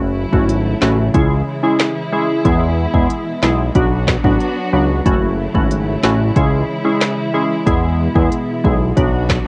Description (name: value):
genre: dancehall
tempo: 92 BPM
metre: 4/4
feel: straight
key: F# minor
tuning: A4 = 440 Hz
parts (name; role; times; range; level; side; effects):
- warm studio string section; sustained chords; 0.0-9.5 s; B2 to F#4; -25 LUFS; equal; sidechain pumping, cassette tape
- fat analog bass; bass; 0.0-9.4 s; F#1 to E2; -20 LUFS; equal; none
- glassy wavetable pluck; accompaniment; 0.3-9.1 s; F#3 to G#4; -20 LUFS; equal; chorus, cassette tape
- afro-pop drum kit; drums; 0.3-9.4 s; handclaps, hi-hat, kick drum, snare drum; -20 LUFS; equal; vintage 12-bit sampler grit
room: digital ambience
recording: home recording on cassette, nothing above 10.6 kHz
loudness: -16 LUFS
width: mono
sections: 0.0-9.5 A section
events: none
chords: 0.0 F#m7; 1.1 C#m; 2.4 E; 3.8 Bm; 5.1 F#m7; 6.4 C#m; 7.7 E; 9.0 Bm